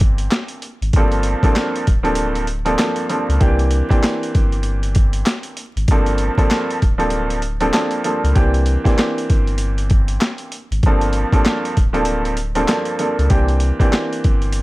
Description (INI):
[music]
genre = hip hop, boom-bap hip-hop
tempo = 97 BPM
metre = 4/4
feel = swing 61% on 16ths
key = G dorian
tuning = A4 = 441 Hz
[part]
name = bright upright piano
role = accompaniment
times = 0.0-14.6 s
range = G2 to A4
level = -20 LUFS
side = right 1 dB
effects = high-pass filter, low-pass filter
[part]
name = soft dub sub bass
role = bass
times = 0.0-14.6 s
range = D1 to C#2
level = -19 LUFS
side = equal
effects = none
[part]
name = boom bap sampler-style drum kit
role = drums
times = 0.0-14.6 s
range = handclaps, hi-hat, kick drum, snare drum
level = -17 LUFS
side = equal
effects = none
[sound]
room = little or no reverb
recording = dry, gritty hardware recording, vinyl crackle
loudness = -15 LUFS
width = side -19 dB against mid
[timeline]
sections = 0.9-14.6 A section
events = none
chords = 0.0 C9; 0.9 Gm11; 3.4 C9; 5.9 Gm11; 8.4 C9; 10.8 Gm11; 13.3 C9